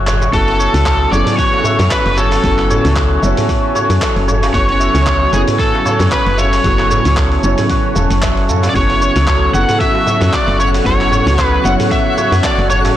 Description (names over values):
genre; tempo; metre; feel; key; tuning
organic downtempo; 114 BPM; 4/4; swing 56% on 16ths; F# minor; A4 = 440 Hz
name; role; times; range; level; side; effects
airy breathy pad; sustained chords; 0.0-13.0 s; C#3 to G#5; -22 LUFS; equal; chorus, sidechain pumping
santur; arpeggios; 0.0-13.0 s; F#4 to E5; -19 LUFS; equal; digital delay
woody FM bass; bass; 0.0-12.9 s; E1 to F#2; -15 LUFS; equal; sidechain pumping
twinkling granular texture; texture; 0.0-0.3, 9.4-13.0 s; F#5 to C#6; -27 LUFS; left 5 dB; built-in reverb
dusty soul sampler-style drum kit; drums; 0.1-12.9 s; handclaps, hi-hat, shaker; -23 LUFS; equal; none
djembe; percussion; 0.1-12.9 s; none; -23 LUFS; right 2 dB; none
overdriven slide guitar; melody; 0.3-12.8 s; G#4 to F#5; -17 LUFS; equal; tape echo
felt-muted upright piano; accompaniment; 0.3-13.0 s; C#3 to C#5; -22 LUFS; equal; vintage 12-bit sampler grit, sidechain pumping, digital delay
electronic kick drum; drums; 0.3-12.6 s; none; -19 LUFS; equal; none
room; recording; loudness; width
light reverb; blown-out, overdriven recording, overdrive; -11 LUFS; side -12 dB against mid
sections
0.3-13.0 A section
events
none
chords
0.3 F#m7